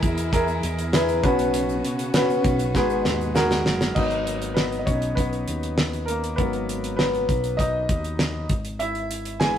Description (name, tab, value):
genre	piano-driven pop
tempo	99 BPM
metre	4/4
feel	straight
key	G# minor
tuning	A4 = 440 Hz
part	clear concert grand piano	accompaniment	0.0-9.6 s	G#2 to G#5	-24 LUFS	left 1 dB	none
part	warm studio string section	sustained chords	0.0-3.9 s	B2 to F#4	-33 LUFS	equal	none
part	fingered electric bass	bass	0.0-9.6 s	F#1 to E2	-29 LUFS	equal	none
part	damped 70s drum kit	drums	0.0-9.5 s	crash cymbal, hi-hat, kick drum, snare drum	-24 LUFS	equal	none
part	tube shaker	percussion	0.0-3.9 s	none	-46 LUFS	left 5 dB	none
room	moderate stone room reverb, RT60 1.3 s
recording	rough rehearsal-room recording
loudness	-21 LUFS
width	side -9 dB against mid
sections	0.0-4.0 A section; 4.0-9.6 B section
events	drum fill 2.7-4.0; grand piano solo 4.0-9.6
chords	0.0 E; 1.2 Bsus2; 2.7 G#m7; 8.5 E/G#